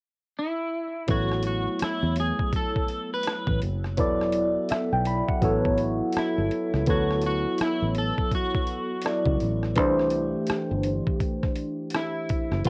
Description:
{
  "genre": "R&B, neo-soul",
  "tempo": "83 BPM",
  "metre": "4/4",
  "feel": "swing 60% on 16ths",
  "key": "A major",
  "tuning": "A4 = 439 Hz",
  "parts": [
    { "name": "electric guitar at the edge of break-up", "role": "melody", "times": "0.4-12.7 s", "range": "E4 to B4", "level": "-32 LUFS", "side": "equal", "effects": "analog chorus" },
    { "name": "barky tine electric piano", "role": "accompaniment", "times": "1.1-12.7 s", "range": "E3 to B5", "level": "-29 LUFS", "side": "equal", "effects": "overdrive, phaser, cassette tape" },
    { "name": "fingered electric bass", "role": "bass", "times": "1.1-12.7 s", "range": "E1 to E2", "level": "-30 LUFS", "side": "equal", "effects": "none" },
    { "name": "dusty soul sampler-style drum kit", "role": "drums", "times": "1.1-12.7 s", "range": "hi-hat, kick drum, rim click", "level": "-31 LUFS", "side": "equal", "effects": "none" }
  ],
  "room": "light reverb",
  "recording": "home recording on cassette",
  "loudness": "-26 LUFS",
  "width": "mono",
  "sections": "0.0-1.1 A section; 1.1-12.7 B section",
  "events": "none",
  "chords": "0.0 N.C.; 1.1 A; 4.0 E9sus4; 5.4 A69; 6.9 Dmaj9; 9.8 C69",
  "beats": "0.36 | 1.09 1.81 2.53 3.25 | 3.98 4.70 5.42 6.15 | 6.87 7.59 8.32 9.04 | 9.76 10.48 11.21 11.93 | 12.65"
}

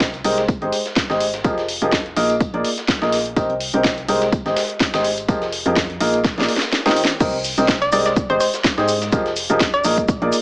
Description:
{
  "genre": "piano house",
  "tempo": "125 BPM",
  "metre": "4/4",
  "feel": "swing 55% on 16ths",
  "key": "Bb mixolydian",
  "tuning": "A4 = 440 Hz",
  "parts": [
    { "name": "clear upright piano", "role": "riff", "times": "0.0-10.3 s", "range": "C3 to Eb5", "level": "-19 LUFS", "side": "equal", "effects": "vintage 12-bit sampler grit, sidechain pumping" },
    { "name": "organ-like FM bass", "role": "bass", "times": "0.0-10.3 s", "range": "F1 to Ab2", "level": "-29 LUFS", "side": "equal", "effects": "sidechain pumping" },
    { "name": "dusty soul sampler-style drum kit", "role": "drums", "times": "0.0-10.4 s", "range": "hi-hat, snare drum", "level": "-29 LUFS", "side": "equal", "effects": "high-pass filter on snare, small room ambience, high-pass filter on hats, high-pass filter on room" },
    { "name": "electronic kick drum", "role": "drums", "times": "0.0-10.2 s", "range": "none", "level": "-20 LUFS", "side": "equal", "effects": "overdrive, small room ambience" },
    { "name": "house drum kit", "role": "drums", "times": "0.0-10.4 s", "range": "crash cymbal, hi-hat, shaker, snare drum", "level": "-22 LUFS", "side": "equal", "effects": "overdrive, small room ambience" },
    { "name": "hollow square pluck", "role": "melody", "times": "7.8-9.9 s", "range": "C5 to D5", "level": "-21 LUFS", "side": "equal", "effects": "chorus, cassette tape, dub echo" }
  ],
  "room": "light reverb",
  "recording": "small speaker sound",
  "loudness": "-16 LUFS",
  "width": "side -28 dB against mid",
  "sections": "0.0-7.2 A section; 7.2-10.4 B section",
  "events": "drum fill 6.2-7.2; drop 7.2-10.4",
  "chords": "0.5 Abmaj7; 1.4 Fm11; 2.2 Bb7sus4; 3.4 Cm7; 4.3 Abmaj7; 5.3 Fm11; 6.0 Bb7sus4; 6.7 Eb69; 7.2 Cm7; 8.2 Abmaj7; 9.1 Fm11; 9.8 Bb7sus4",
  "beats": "0.01 0.48 0.96 | 1.45 1.93 2.40 2.88 | 3.37 3.85 4.33 4.80 | 5.29 5.76 6.25 6.72 | 7.21 7.68 8.16 8.64 | 9.12 9.61 10.09"
}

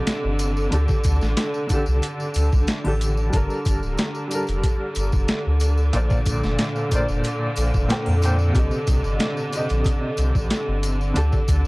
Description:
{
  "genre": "trip hop",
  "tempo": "92 BPM",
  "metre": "4/4",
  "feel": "straight",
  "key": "G minor",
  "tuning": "A4 = 436 Hz",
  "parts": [
    { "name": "felt-muted upright piano", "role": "accompaniment", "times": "0.0-11.7 s", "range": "Bb2 to G5", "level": "-27 LUFS", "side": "equal", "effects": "tremolo, tape echo" },
    { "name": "rich symphonic string section", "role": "sustained chords", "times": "0.0-11.7 s", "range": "D3", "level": "-28 LUFS", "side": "right 1 dB", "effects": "none" },
    { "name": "soft dub sub bass", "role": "bass", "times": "0.0-11.6 s", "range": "D1 to F2", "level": "-21 LUFS", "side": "equal", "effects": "none" },
    { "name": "boom bap sampler-style drum kit", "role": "drums", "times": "0.1-11.6 s", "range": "hi-hat, kick drum, snare drum", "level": "-22 LUFS", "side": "equal", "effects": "overdrive" },
    { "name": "tambourine and triangle", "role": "percussion", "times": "0.1-11.7 s", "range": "none", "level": "-39 LUFS", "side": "left 2 dB", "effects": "none" }
  ],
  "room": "small room ambience",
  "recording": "dry, gritty hardware recording, transformer saturation, cassette tape",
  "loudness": "-19 LUFS",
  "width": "side -25 dB against mid",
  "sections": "0.0-11.7 A section",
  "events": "none",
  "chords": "0.0 Cm; 0.7 Dsus4; 3.3 Gmadd9; 5.9 Bbadd9; 8.5 Cm; 11.2 Dsus4",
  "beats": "0.07 | 0.72 1.37 2.02 2.68 | 3.33 3.98 4.63 5.29 | 5.94 6.59 7.24 7.89 | 8.55 9.20 9.85 10.50 | 11.15"
}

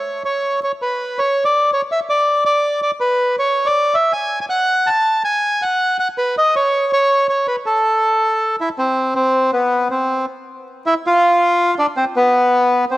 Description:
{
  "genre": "tango",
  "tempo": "162 BPM",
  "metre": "3/4",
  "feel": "rubato",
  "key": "unclear",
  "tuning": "A4 = 440 Hz",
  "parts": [
    { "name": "bandoneon", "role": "solo", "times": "0.0-13.0 s", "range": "B3 to A5", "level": "-14 LUFS", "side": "equal", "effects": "cassette tape" }
  ],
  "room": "moderate lush hall reverb, RT60 3.0 s",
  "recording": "home recording on cassette, vinyl crackle",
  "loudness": "-14 LUFS",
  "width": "side -17 dB against mid",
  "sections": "0.1-9.0 A section; 9.0-13.0 B section",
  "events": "none",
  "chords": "none",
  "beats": "| 0.06 0.43 0.81 | 1.18 1.54 1.91 | 2.28 2.65 3.02 | 3.39 3.77 4.14 | 4.52 4.89 5.27 | 5.64 6.01 6.37 | 6.74 7.11 7.48 | 7.85 8.23 8.60 | 8.98 9.36 9.73 | 10.10 10.47 10.84 | 11.21 11.58 11.95 | 12.32 12.69"
}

